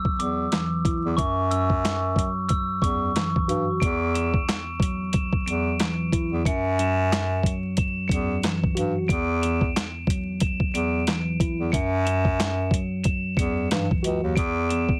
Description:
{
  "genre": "hip hop, boom-bap hip-hop",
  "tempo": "91 BPM",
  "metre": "4/4",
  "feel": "swing 59% on 16ths",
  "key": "unclear",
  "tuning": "A4 = 445 Hz",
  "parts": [
    { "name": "glockenspiel with brass mallets", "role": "melody", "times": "0.0-15.0 s", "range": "C#6 to E7", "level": "-32 LUFS", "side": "equal", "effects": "high-pass filter, low-pass filter, digital delay" },
    { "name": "mellow tine electric piano", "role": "accompaniment", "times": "0.0-15.0 s", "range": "E2 to F#4", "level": "-31 LUFS", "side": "equal", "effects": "cassette tape, high-pass filter, low-pass filter" },
    { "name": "boom bap sampler-style drum kit", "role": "drums", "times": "0.1-15.0 s", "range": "handclaps, hi-hat, kick drum, snare drum", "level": "-27 LUFS", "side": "equal", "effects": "none" },
    { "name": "warm bass clarinet", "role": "bass", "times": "0.2-15.0 s", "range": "C#2 to G2", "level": "-27 LUFS", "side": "equal", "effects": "none" }
  ],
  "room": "little or no reverb",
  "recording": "heavily compressed radio sound, multiband compression, vinyl crackle",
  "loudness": "-24 LUFS",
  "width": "mono",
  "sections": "0.0-3.8 A section; 3.8-15.0 B section",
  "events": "none",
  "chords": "0.0 Esus2; 11.7 F#5; 14.4 N.C."
}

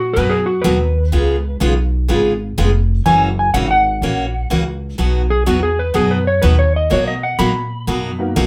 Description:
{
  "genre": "country",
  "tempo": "125 BPM",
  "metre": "4/4",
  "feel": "swing 66% on 8ths",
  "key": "B major",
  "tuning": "A4 = 441 Hz",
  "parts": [
    { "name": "clean lap steel guitar", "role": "second line", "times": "0.0-8.3 s", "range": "F#4 to B5", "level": "-20 LUFS", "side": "equal", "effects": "none" },
    { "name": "upright bass", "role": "bass", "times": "0.0-8.5 s", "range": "E#1 to B2", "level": "-20 LUFS", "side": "equal", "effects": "none" },
    { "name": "picked steel-string acoustic guitar", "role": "accompaniment", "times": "0.2-8.5 s", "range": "B2 to G#4", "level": "-21 LUFS", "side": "equal", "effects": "none" },
    { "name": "honky-tonk upright piano", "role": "accompaniment", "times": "8.2-8.3 s", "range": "A#3 to A#4", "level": "-23 LUFS", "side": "equal", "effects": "none" }
  ],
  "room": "wet studio reverb, RT60 0.5 s",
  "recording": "band playing live in one room",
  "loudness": "-16 LUFS",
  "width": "mono",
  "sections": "0.0-8.5 A section",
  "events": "electric slide guitar solo 0.0-8.5",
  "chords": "0.0 Bmaj7; 1.1 C#7; 3.1 F#7; 5.0 B; 6.9 Bmaj7"
}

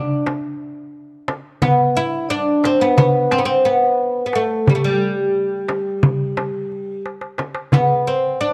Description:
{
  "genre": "Turkish makam ensemble",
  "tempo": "177 BPM (eighths)",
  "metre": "9/8",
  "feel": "straight",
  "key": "G makam rast",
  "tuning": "A4 = 442 Hz",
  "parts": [
    { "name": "oud", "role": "melody", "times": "0.0-8.5 s", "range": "G3 to E4", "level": "-21 LUFS", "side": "equal", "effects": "none" },
    { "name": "vibraphone with soft mallets", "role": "second line", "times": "0.0-8.5 s", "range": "G4 to E5", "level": "-24 LUFS", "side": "equal", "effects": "none" },
    { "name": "darbuka", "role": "percussion", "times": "0.3-8.5 s", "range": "none", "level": "-25 LUFS", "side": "equal", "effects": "none" },
    { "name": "frame drum", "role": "percussion", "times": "0.3-7.9 s", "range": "none", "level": "-22 LUFS", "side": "equal", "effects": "none" }
  ],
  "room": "light reverb",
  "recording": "none",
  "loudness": "-18 LUFS",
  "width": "mono",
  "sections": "0.0-7.7 A section",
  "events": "drum fill 7.0-7.7",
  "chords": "none"
}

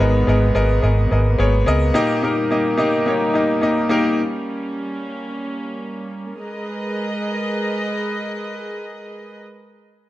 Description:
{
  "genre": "pop",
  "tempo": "108 BPM",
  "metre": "4/4",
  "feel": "straight",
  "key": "G# harmonic minor",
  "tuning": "A4 = 440 Hz",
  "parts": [
    { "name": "bright upright piano", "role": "accompaniment", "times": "0.0-4.2 s", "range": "G#2 to D#5", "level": "-18 LUFS", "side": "left 1 dB", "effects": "none" },
    { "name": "warm studio string section", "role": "sustained chords", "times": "0.0-9.4 s", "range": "G3 to D#5", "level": "-25 LUFS", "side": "right 1 dB", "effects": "none" },
    { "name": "vintage muted fingered electric bass", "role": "bass", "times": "0.0-1.9 s", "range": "G#1 to C#2", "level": "-17 LUFS", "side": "equal", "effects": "none" }
  ],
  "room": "light reverb",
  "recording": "dark, warm production, nothing above 10.3 kHz",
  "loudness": "-17 LUFS",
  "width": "side -15 dB against mid",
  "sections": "0.0-6.4 A section; 6.4-8.6 B section",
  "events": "none",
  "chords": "0.0 G#madd9; 2.0 D#; 6.4 G#madd9"
}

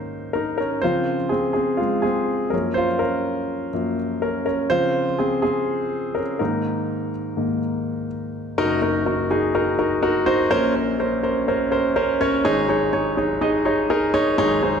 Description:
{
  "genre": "pop",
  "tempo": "124 BPM",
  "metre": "4/4",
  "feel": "straight",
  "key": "unclear",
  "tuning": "A4 = 439 Hz",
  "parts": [
    { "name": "warm concert grand piano", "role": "solo", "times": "0.0-14.8 s", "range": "Gb1 to Eb5", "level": "-19 LUFS", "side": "equal", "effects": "none" }
  ],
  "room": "wet recital hall reverb, RT60 1.7 s",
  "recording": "dark, warm production",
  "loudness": "-19 LUFS",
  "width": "side -7 dB against mid",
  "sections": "0.0-8.6 A section; 8.6-14.8 B section",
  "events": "grand piano solo 0.0-8.6",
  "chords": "0.0 Absus2; 0.8 Dbmaj7; 2.5 Gbmaj7; 4.7 Dbmaj7; 6.4 Absus2; 8.6 Gb6; 10.5 Bbmadd9; 12.4 Absus4"
}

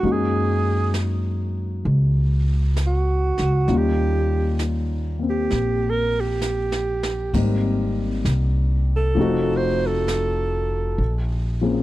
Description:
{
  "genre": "jazz ballad",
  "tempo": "66 BPM",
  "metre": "4/4",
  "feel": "swing 67% on 8ths",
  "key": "unclear",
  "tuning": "A4 = 440 Hz",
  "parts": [
    { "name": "warm alto saxophone", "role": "melody", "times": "0.0-11.2 s", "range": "F#4 to C5", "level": "-24 LUFS", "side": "right 4 dB", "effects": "none" },
    { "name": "dark grand piano", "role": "accompaniment", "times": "0.0-11.8 s", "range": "F3 to Ab4", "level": "-25 LUFS", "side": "left 4 dB", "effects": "none" },
    { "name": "upright bass", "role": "bass", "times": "0.0-11.8 s", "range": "F1 to Gb2", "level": "-21 LUFS", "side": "equal", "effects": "none" },
    { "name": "jazz brush drum kit", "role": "drums", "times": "0.0-11.8 s", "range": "brushed snare drum, crash cymbal, hi-hat, kick drum, snare drum", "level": "-33 LUFS", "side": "right 1 dB", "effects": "none" }
  ],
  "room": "small room ambience",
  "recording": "dry, close 1970s-style studio recording",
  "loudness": "-19 LUFS",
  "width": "side -16 dB against mid",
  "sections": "0.0-11.8 A section",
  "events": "alto saxophone solo 0.0-11.8; drum fill 6.4-7.3",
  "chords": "0.0 Gb69; 3.7 Eb7; 7.3 Abmaj9; 9.2 F7b9; 11.0 Bbm7"
}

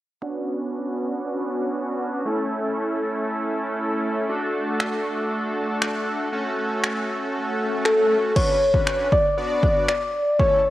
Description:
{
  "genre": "dance-pop",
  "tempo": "118 BPM",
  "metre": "4/4",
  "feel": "straight",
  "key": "unclear",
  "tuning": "A4 = 438 Hz",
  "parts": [
    { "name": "big bright polysynth", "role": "accompaniment", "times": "0.2-10.6 s", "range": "A3 to D5", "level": "-24 LUFS", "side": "equal", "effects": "chorus, sidechain pumping, low-pass filter, cassette tape" },
    { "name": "punchy analog drum machine", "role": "drums", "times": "4.8-10.5 s", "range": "crash cymbal, finger snaps, kick drum", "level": "-24 LUFS", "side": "equal", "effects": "cassette tape" },
    { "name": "swell", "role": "sound effects", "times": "7.3-8.4 s", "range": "none", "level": "-32 LUFS", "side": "right 1 dB", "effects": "none" },
    { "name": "soft struck synth lead", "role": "melody", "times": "7.9-10.7 s", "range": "A4 to D5", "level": "-19 LUFS", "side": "left 1 dB", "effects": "chorus, cassette tape, analog delay" }
  ],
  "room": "light reverb, digital ambience",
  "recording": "home recording on cassette",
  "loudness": "-21 LUFS",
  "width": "side -15 dB against mid",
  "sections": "0.2-8.4 A section; 8.4-10.7 B section",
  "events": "filter sweep on analog polysynth 0.2-8.4; swell 7.3-8.4; kick muted 7.3-8.4",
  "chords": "0.2 Bmadd9; 2.3 A; 4.3 D; 6.3 F#m; 8.4 Bmadd9"
}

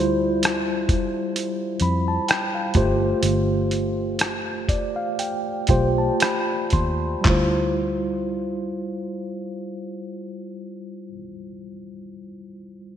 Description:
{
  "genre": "R&B, neo-soul",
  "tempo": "56-66 BPM",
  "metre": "4/4",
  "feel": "swing 55% on 16ths",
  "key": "D dorian",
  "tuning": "A4 = 441 Hz",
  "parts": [
    { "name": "mellow tine electric piano", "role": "accompaniment", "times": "0.0-13.0 s", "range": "G3 to C6", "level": "-24 LUFS", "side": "equal", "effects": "medium stereo tremolo, low-pass filter" },
    { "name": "vintage muted fingered electric bass", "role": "bass", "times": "0.0-11.1 s", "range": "G1 to F2", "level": "-25 LUFS", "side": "equal", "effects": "none" },
    { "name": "dusty soul sampler-style drum kit", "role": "drums", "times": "0.4-7.5 s", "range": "handclaps, hi-hat, kick drum, rim click", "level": "-22 LUFS", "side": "equal", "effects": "gated reverb" }
  ],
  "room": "moderate lush hall reverb, RT60 2.6 s",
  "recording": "bright 1980s-style digital production",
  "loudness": "-20 LUFS",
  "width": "side -10 dB against mid",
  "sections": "0.0-7.2 A section; 7.2-11.5 B section",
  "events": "slowing down 0.0-7.2; filter sweep on tine electric piano 0.0-7.2; tine electric piano fill 4.2-7.2",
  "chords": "0.0 Dm11; 2.7 G9sus4; 7.2 Dm11"
}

